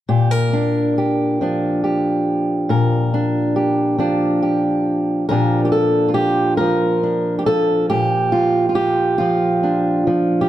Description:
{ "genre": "folk, solo fingerstyle acoustic guitar", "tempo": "46 BPM (dotted quarters)", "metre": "6/8", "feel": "straight", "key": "Bb major", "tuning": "A4 = 441 Hz", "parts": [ { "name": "fingerpicked steel-string acoustic guitar", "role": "solo", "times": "0.1-10.5 s", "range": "Bb2 to Bb4", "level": "-15 LUFS", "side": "equal", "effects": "none" } ], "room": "moderate recital hall reverb, RT60 1.5 s", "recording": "close, detailed microphones", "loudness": "-15 LUFS", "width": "side -13 dB against mid", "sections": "0.1-5.3 A section; 5.3-10.5 B section", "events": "none", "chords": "0.1 Bb6", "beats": "| 0.09 1.39 | 2.69 3.99 | 5.30 6.60 | 7.89 9.18 | 10.47" }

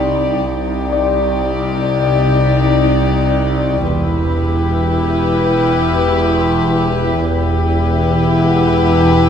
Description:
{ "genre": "cinematic, suspense film score", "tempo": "71 BPM", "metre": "4/4", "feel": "straight", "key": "unclear", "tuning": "A4 = 441 Hz", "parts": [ { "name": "warm chamber violin section", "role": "melody", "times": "0.0-9.3 s", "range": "B4 to D5", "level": "-20 LUFS", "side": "left 4 dB", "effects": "none" }, { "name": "rich chamber violin section", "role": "second line", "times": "0.0-9.3 s", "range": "G4", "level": "-21 LUFS", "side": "left 6 dB", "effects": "none" }, { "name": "warm chamber viola section", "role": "accompaniment", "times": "0.0-9.3 s", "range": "Eb4 to E4", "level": "-20 LUFS", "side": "right 3 dB", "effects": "none" }, { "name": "clear chamber double bass section", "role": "bass", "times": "0.0-9.3 s", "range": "E1 to C2", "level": "-21 LUFS", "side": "right 2 dB", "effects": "none" }, { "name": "dark chamber cello section", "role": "bass", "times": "0.0-9.3 s", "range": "E2 to C3", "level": "-19 LUFS", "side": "equal", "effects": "none" }, { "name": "overtone-sweeping drone", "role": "drone", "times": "0.0-9.3 s", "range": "C2 to E2", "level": "-21 LUFS", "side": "left 2 dB", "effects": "chorus, built-in reverb" }, { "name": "Celtic harp", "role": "texture", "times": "0.9-9.3 s", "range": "Eb4 to E5", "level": "-22 LUFS", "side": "left 2 dB", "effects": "none" } ], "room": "wet scoring stage reverb, RT60 1.7 s", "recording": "dark, warm production", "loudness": "-13 LUFS", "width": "side -8 dB against mid", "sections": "0.0-9.3 A section", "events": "none", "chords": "0.0 Cmadd9; 3.9 Em", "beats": "| 0.50 1.34 2.18 3.02 | 3.87 4.71 5.55 6.39 | 7.24 8.08 8.93" }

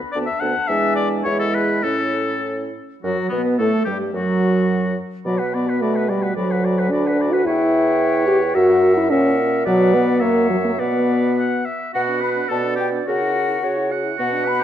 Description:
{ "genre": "quick classical-period movement for wind quintet", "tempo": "108 BPM", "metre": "2/4", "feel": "rubato", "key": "A major, B minor from 3.0 s", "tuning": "A4 = 440 Hz", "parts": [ { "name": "mellow hollow silver concert flute", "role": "melody", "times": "0.0-14.6 s", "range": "F#4 to B5", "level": "-28 LUFS", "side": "left 8 dB", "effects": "none" }, { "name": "clear oboe", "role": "second line", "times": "0.1-14.6 s", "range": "B3 to F#5", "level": "-25 LUFS", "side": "left 4 dB", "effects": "none" }, { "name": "mellow clarinet", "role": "accompaniment", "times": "0.1-14.6 s", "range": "F#3 to F#5", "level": "-27 LUFS", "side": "right 7 dB", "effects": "none" }, { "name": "dark French horn", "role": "accompaniment", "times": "0.2-14.6 s", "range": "F#3 to G4", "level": "-20 LUFS", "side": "equal", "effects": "none" }, { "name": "dark bassoon", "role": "bass", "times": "0.2-14.6 s", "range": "D2 to C#3", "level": "-23 LUFS", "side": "right 2 dB", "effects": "none" } ], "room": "moderate recital hall reverb, RT60 1.5 s", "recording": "dark, warm production", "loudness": "-16 LUFS", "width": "side -10 dB against mid", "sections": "0.0-3.0 A section; 3.0-11.9 B section; 11.9-14.6 B section", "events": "none", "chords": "0.0 Bm/D; 0.7 E7; 1.3 E; 1.8 A; 3.0 B5/F#; 4.1 N.C.; 5.3 Bm; 6.4 Bm/D; 7.5 C#m7b5/E; 8.6 F#7; 9.7 Bm; 10.2 F#7; 10.8 Bm; 13.1 F#7/C#", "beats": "0.15 | 0.69 1.25 | 1.84 2.44 | 3.03 3.59 | 4.14 4.70 | 5.26 5.81 | 6.37 6.92 | 7.46 8.01 | 8.55 9.11 | 9.66 10.22 | 10.79 11.38 | 11.95 12.51 | 13.07 13.63 | 14.19" }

